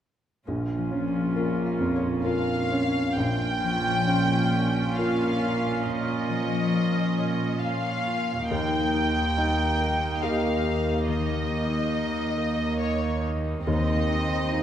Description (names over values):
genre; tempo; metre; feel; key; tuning
cinematic; 68 BPM; 3/4; rubato; Bb dorian; A4 = 440 Hz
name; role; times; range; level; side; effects
felt-muted upright piano; accompaniment; 0.5-14.6 s; Bb1 to Bb4; -28 LUFS; equal; none
warm studio viola section; accompaniment; 0.5-14.6 s; Bb3 to F4; -32 LUFS; right 2 dB; none
concert harp; arpeggios; 0.5-14.6 s; Bb2 to F5; -30 LUFS; left 4 dB; none
warm studio cello section; bass; 0.5-14.6 s; Eb2 to Bb2; -30 LUFS; right 2 dB; none
warm studio violin section; melody; 2.2-14.6 s; Db5 to G5; -29 LUFS; left 1 dB; none
room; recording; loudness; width
wet scoring stage reverb, RT60 1.5 s; none; -23 LUFS; side -10 dB against mid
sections
0.5-3.2 A section; 3.2-14.6 B section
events
none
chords
0.5 Bbm; 8.5 Eb; 13.7 Cm/Eb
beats
| 0.47 1.36 2.25 | 3.17 4.08 4.97 | 5.84 6.73 7.62 | 8.50 9.36 10.22 | 11.07 11.93 12.81 | 13.67 14.53